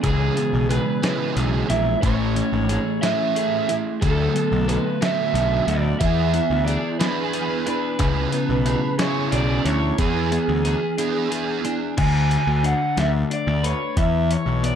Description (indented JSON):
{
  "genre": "indie rock",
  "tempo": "60 BPM (dotted quarters)",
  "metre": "6/8",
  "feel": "straight",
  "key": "unclear",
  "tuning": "A4 = 440 Hz",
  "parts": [
    { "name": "raw garage guitar", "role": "melody", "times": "0.0-14.8 s", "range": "G#4 to G#5", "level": "-25 LUFS", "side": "right 3 dB", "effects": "overdrive, spring reverb" },
    { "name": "sludgy distorted guitar", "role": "riff", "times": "0.0-14.8 s", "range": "C#3 to B4", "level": "-26 LUFS", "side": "left 9 dB", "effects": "overdrive" },
    { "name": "thick fuzz guitar", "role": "riff", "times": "0.0-11.9 s", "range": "E3 to G#4", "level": "-25 LUFS", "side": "right 8 dB", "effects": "distortion, ensemble chorus" },
    { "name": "fuzz picked electric bass", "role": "bass", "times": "0.0-14.7 s", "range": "G#1 to E2", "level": "-22 LUFS", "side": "equal", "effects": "overdrive" },
    { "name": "dusty soul sampler-style drum kit", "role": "drums", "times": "0.0-14.8 s", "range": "crash cymbal, hi-hat, kick drum, snare drum", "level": "-26 LUFS", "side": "left 1 dB", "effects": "none" }
  ],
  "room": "light reverb",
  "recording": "none",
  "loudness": "-19 LUFS",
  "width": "side -8 dB against mid",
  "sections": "0.0-12.0 A section; 12.0-14.8 B section",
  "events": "break 11.0-12.0",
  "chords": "0.0 C#m7; 2.0 Amaj7; 4.0 D6; 6.0 E7; 8.0 C#m7; 10.0 E7; 12.0 D5; 14.0 E5"
}